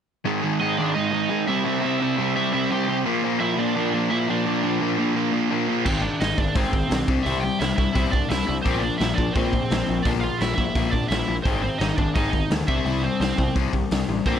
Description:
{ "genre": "punk rock", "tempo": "172 BPM", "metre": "4/4", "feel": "straight", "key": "C mixolydian", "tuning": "A4 = 440 Hz", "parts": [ { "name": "raw garage guitar", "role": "riff", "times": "0.2-14.4 s", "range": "Ab2 to C4", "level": "-25 LUFS", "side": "left 8 dB", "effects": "overdrive" }, { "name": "sludgy distorted guitar", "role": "riff", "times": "0.3-5.9 s", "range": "Ab2 to C4", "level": "-25 LUFS", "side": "right 16 dB", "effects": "overdrive" }, { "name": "crunchy overdriven guitar", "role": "melody", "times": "0.6-14.4 s", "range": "C4 to G5", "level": "-26 LUFS", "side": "right 4 dB", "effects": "none" }, { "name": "modern bright picked electric bass", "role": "bass", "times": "5.9-14.4 s", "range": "Ab1 to D2", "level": "-28 LUFS", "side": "right 1 dB", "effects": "none" }, { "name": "raw garage drum kit", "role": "drums", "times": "5.9-14.3 s", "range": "crash cymbal, hi-hat, kick drum, snare drum", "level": "-25 LUFS", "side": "right 1 dB", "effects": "none" } ], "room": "light reverb", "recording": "none", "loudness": "-20 LUFS", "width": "side -8 dB against mid", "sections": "0.3-5.9 A section; 5.9-14.4 B section", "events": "none", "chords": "0.3 Ab5; 1.5 C; 3.1 Bb; 5.9 Ab; 7.1 C; 8.7 Bb; 11.5 Ab; 12.7 C" }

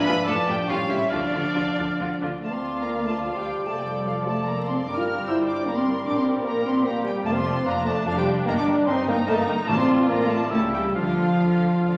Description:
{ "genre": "quick classical-period movement for symphony orchestra", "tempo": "135-154 BPM", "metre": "3/4", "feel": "rubato", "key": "D minor", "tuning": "A4 = 440 Hz", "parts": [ { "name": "rich studio violin section", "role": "melody", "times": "0.0-12.0 s", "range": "D4 to B5", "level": "-38 LUFS", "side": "equal", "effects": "none" }, { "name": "mellow cor anglais", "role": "second line", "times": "0.0-12.0 s", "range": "Bb4 to F5", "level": "-33 LUFS", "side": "equal", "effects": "none" }, { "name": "rich studio violin section", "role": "second line", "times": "0.0-12.0 s", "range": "D4 to F6", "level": "-37 LUFS", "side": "equal", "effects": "none" }, { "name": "silver concert flute", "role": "second line", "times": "0.0-12.0 s", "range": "D5 to F6", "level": "-36 LUFS", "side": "equal", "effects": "none" }, { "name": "mellow French horn section", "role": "sustained chords", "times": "0.0-12.0 s", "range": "F3 to F4", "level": "-26 LUFS", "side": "equal", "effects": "none" }, { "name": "rich studio viola section", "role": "accompaniment", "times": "0.1-12.0 s", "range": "C#4 to C5", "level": "-35 LUFS", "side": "equal", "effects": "none" }, { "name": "rich studio cello section", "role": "bass", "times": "0.1-12.0 s", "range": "D2 to D3", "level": "-37 LUFS", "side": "equal", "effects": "none" }, { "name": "warm studio double bass section", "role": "bass", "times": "0.1-12.0 s", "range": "F1 to D2", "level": "-38 LUFS", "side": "equal", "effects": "none" }, { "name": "clear bassoon", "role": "accompaniment", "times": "2.4-12.0 s", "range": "Eb3 to G3", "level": "-36 LUFS", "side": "equal", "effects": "none" }, { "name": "timpani", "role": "percussion", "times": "9.7-10.3 s", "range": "A2", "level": "-38 LUFS", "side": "equal", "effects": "none" } ], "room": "wet scoring stage reverb, RT60 1.7 s", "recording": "vinyl crackle", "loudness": "-24 LUFS", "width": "mono", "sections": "0.0-2.4 A section; 2.4-12.0 A section", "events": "none", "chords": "0.3 Dm/A; 0.7 A7; 1.1 Dm; 3.7 Dm/F; 4.9 Gm; 6.1 Gm/Bb; 7.3 Dm/F; 8.5 Eb/G; 9.7 Dm/A; 10.5 A7/C#; 10.9 Dm" }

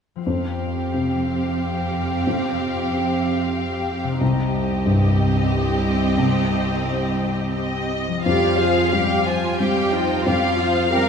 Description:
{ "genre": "cinematic", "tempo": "91 BPM", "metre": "3/4", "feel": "rubato", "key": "unclear", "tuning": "A4 = 440 Hz", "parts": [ { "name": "rich studio violin section", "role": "melody", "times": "0.2-11.1 s", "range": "Eb5 to Ab5", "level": "-27 LUFS", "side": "left 4 dB", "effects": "none" }, { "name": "concert harp", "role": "arpeggios", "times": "0.2-11.1 s", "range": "C3 to G4", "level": "-30 LUFS", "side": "left 5 dB", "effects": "none" }, { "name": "rich studio violin section", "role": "second line", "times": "0.3-11.1 s", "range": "F4 to F5", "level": "-26 LUFS", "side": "equal", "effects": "none" }, { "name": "felt-muted upright piano", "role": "accompaniment", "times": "0.3-11.1 s", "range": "C2 to G5", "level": "-23 LUFS", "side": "left 1 dB", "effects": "none" }, { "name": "rich studio viola section", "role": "accompaniment", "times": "0.3-11.1 s", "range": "F3 to G4", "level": "-27 LUFS", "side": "right 5 dB", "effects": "none" }, { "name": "rich studio cello section", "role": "bass", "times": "0.3-11.1 s", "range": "C2 to Bb4", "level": "-26 LUFS", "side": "right 2 dB", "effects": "none" } ], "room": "wet scoring stage reverb, RT60 1.9 s", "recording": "minimal, uncompressed stereo recording", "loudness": "-18 LUFS", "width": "side -6 dB against mid", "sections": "0.3-8.3 A section; 8.3-11.1 B section", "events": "none", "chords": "0.3 Fsus2; 4.2 Cm; 8.3 Fsus2" }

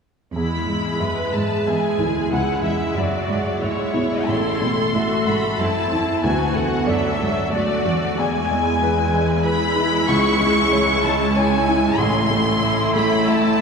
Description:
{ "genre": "cinematic", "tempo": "93 BPM", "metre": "3/4", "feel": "rubato", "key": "E mixolydian", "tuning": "A4 = 440 Hz", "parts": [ { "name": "rich studio violin section", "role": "melody", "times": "0.4-13.6 s", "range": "C#5 to C#6", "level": "-22 LUFS", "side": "left 2 dB", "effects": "none" }, { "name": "clear baby grand piano", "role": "accompaniment", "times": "0.4-13.6 s", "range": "A1 to E5", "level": "-22 LUFS", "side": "left 1 dB", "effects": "none" }, { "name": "rich symphonic viola section", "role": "accompaniment", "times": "0.4-13.6 s", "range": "F#3 to B4", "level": "-24 LUFS", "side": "right 1 dB", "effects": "none" }, { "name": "rich symphonic cello section", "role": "bass", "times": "0.4-13.6 s", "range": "C#2 to B2", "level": "-24 LUFS", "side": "right 2 dB", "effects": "none" } ], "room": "wet church reverb, RT60 3.5 s", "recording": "minimal, uncompressed stereo recording", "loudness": "-17 LUFS", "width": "side -5 dB against mid", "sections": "0.4-13.6 A section", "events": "none", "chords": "0.4 E; 2.3 C#m; 4.3 Am; 6.2 D; 8.2 E; 10.1 C#m; 12.0 Am" }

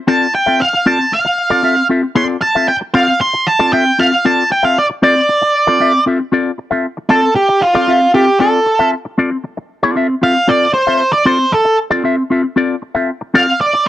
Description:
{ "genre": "funk", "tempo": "115 BPM", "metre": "4/4", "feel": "straight", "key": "D minor", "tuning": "A4 = 442 Hz", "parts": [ { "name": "octave-fuzz lead guitar", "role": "melody", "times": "0.1-13.9 s", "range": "F4 to C6", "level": "-12 LUFS", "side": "right 1 dB", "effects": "distortion" }, { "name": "electric guitar with an envelope filter", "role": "accompaniment", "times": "0.1-13.8 s", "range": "C4 to E5", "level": "-14 LUFS", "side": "left 2 dB", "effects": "phaser" } ], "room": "little or no reverb", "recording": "dry, close 1970s-style studio recording", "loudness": "-11 LUFS", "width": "side -13 dB against mid", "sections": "0.0-6.3 A section; 6.3-13.9 B section", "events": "lead electric guitar solo 6.3-13.9", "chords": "0.0 Dm7" }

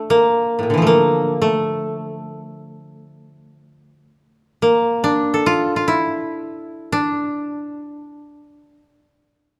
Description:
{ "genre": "japanese traditional, Japanese chamber music", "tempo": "free time", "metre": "none", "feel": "none", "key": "D hirajoshi", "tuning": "A4 = 440 Hz", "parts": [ { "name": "koto", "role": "solo", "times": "0.0-9.5 s", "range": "A2 to A4", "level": "-19 LUFS", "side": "equal", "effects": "none" } ], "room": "moderate recital hall reverb, RT60 1.6 s", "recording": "dark, warm production", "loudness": "-19 LUFS", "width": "mono", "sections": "0.0-9.6 A section", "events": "none", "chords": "none" }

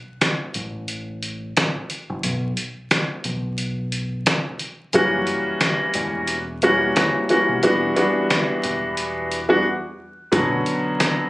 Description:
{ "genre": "hip hop, boom-bap hip-hop", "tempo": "89 BPM", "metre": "4/4", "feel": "swing 58% on 16ths", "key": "B harmonic minor", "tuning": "A4 = 439 Hz", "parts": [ { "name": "dusty soul sampler-style drum kit", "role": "drums", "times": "0.2-11.2 s", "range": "hi-hat, kick drum, snare drum", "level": "-21 LUFS", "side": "equal", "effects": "none" }, { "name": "deep dub fingered electric bass", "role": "bass", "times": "0.6-10.6 s", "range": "E1 to B1", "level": "-29 LUFS", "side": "equal", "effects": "none" }, { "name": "warm upright piano", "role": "accompaniment", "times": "4.9-11.3 s", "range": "D3 to F#4", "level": "-18 LUFS", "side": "equal", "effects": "high-pass filter, low-pass filter" } ], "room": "light reverb", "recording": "recorded on a phone in the room, club reverb, vinyl crackle", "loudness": "-19 LUFS", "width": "side -19 dB against mid", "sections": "0.0-11.3 A section", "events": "break 0.0-10.3", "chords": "0.0 B5; 4.9 F#7b9; 7.6 Em7; 10.3 Bmadd9" }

